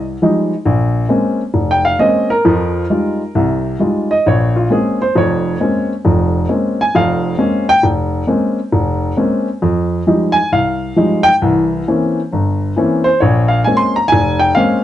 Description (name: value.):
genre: solo jazz.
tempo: 134 BPM.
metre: 4/4.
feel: swing 66% on 8ths, rubato.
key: unclear.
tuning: A4 = 440 Hz.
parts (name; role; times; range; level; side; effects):
warm upright piano; solo; 0.0-14.8 s; F1 to C6; -12 LUFS; equal; none.
room: moderate small room reverb, RT60 0.5 s.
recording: dark, warm production, nothing above 10.9 kHz.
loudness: -12 LUFS.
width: side -12 dB against mid.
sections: 0.0-14.8 A section.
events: upright piano solo 0.0-14.8.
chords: 0.0 Fm9; 0.7 Bbm9; 2.4 Fm9; 4.3 Bbm9; 9.6 Fm9; 11.4 C7b9; 13.2 Bbm9.